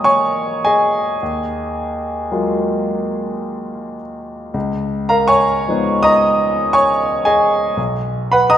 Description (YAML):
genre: classical, impressionist solo piano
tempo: 52-58 BPM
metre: 3/4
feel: rubato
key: unclear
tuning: A4 = 439 Hz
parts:
  - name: warm grand piano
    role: solo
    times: 0.0-8.6 s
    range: B1 to Eb6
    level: -14 LUFS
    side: equal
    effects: none
room: moderate concert hall reverb, RT60 2.1 s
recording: minimal, uncompressed stereo recording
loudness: -14 LUFS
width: side -10 dB against mid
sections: 0.0-8.6 A section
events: none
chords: 0.0 Ebm11; 1.2 Gbmaj9/Eb; 4.6 Db9; 7.8 B